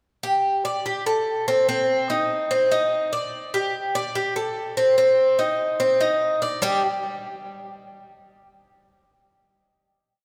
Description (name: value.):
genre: latin.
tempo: 146 BPM.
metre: 4/4.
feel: straight.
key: unclear.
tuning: A4 = 441 Hz.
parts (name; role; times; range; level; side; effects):
Cuban tres; solo; 0.2-6.8 s; G3 to D5; -22 LUFS; equal; analog delay.
room: wet church reverb, RT60 2.7 s.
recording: dreamy mix soaked in reverb.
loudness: -22 LUFS.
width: mono.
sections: 0.0-6.6 montuno (vamp); 6.6-8.3 final chord.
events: none.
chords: 0.0 Gsus2; 1.7 Cm; 3.3 Gsus2; 5.0 Cm; 6.6 G5.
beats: | 0.03 0.44 0.86 1.27 | 1.68 2.10 2.51 2.92 | 3.34 3.75 4.16 4.57 | 4.98 5.39 5.80 6.21 | 6.63.